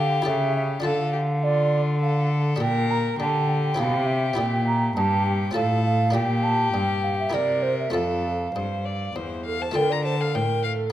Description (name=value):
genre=classical, baroque-style sonata movement with continuo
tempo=102 BPM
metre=3/4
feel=straight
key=F major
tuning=A4 = 440 Hz
part: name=warm violin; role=melody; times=0.0-10.7 s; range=F4 to Bb5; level=-29 LUFS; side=left 6 dB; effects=none
part: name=mellow hollow baroque flute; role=second line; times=0.0-10.9 s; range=A4 to Bb5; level=-26 LUFS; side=right 4 dB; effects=none
part: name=buff-stop harpsichord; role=accompaniment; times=0.0-10.9 s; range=E2 to A4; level=-31 LUFS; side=equal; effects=none
part: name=rich cello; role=bass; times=0.0-10.9 s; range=E2 to D3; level=-24 LUFS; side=equal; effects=none
room=wet recital hall reverb, RT60 1.9 s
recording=none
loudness=-21 LUFS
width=side -12 dB against mid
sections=0.0-9.8 A section; 9.8-10.9 A section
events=none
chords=0.3 A7/C#; 0.8 Dm; 2.6 Gm/Bb; 3.8 C; 4.4 C7/Bb; 5.6 F/A; 6.1 Gm/Bb; 7.3 C7; 7.9 F; 9.8 Dm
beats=0.26 | 0.84 1.43 2.02 | 2.61 3.20 3.78 | 4.37 4.96 5.55 | 6.15 6.74 7.34 | 7.94 8.55 9.16 | 9.76 10.35